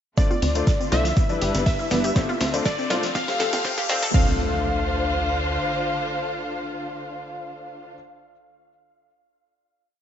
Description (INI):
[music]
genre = progressive house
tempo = 121 BPM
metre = 4/4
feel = straight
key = D dorian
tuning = A4 = 441 Hz
[part]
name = plucky unison lead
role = melody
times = 0.2-7.9 s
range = D5 to F5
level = -28 LUFS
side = equal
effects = tape echo
[part]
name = warm studio string section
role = sustained chords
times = 0.2-7.9 s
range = D3 to C5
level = -30 LUFS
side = left 2 dB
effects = sidechain pumping
[part]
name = analog pluck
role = arpeggios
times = 0.2-4.4 s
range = B3 to A4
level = -29 LUFS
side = equal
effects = chorus, sidechain pumping, tape echo
[part]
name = warm baby grand piano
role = stabs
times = 0.2-7.9 s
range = G3 to G5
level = -30 LUFS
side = left 4 dB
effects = sidechain pumping, low-pass filter, tape echo
[part]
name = deep house drum kit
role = drums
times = 0.2-4.2 s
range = crash cymbal, hi-hat, snare drum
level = -31 LUFS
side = left 1 dB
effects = high-pass filter on snare, high-pass filter on hats, high-pass filter on cymbals, high-pass filter on room
[part]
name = electronic kick drum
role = drums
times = 0.2-4.2 s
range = none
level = -21 LUFS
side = equal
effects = none
[part]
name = huge arena drum kit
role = drums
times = 0.2-4.0 s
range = hi-hat, shaker, snare drum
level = -40 LUFS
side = right 3 dB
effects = none
[part]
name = tambourine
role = percussion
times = 0.2-4.1 s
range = none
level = -37 LUFS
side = left 2 dB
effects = none
[part]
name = riser and impact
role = sound effects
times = 1.8-8.0 s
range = none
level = -32 LUFS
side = equal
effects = none
[part]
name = congas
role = percussion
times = 0.3-4.0 s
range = none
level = -35 LUFS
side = equal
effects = none
[part]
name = tight sequencer bass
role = bass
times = 0.4-5.6 s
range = G1 to F2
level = -27 LUFS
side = equal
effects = sidechain pumping
[sound]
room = light reverb, studio reverb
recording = high-pass filter, nothing above 7.8 kHz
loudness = -20 LUFS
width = side -9 dB against mid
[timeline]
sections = 0.2-4.1 build; 4.1-8.1 final chord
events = build-up 0.2-4.1; drum fill 0.2-4.1; filter sweep on synth arpeggio sound 0.2-4.1; filter sweep 0.2-4.1; riser 1.8-4.1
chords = 0.2 Dm7; 1.2 G6; 2.2 Dm7; 3.2 Fadd9; 4.1 Dm7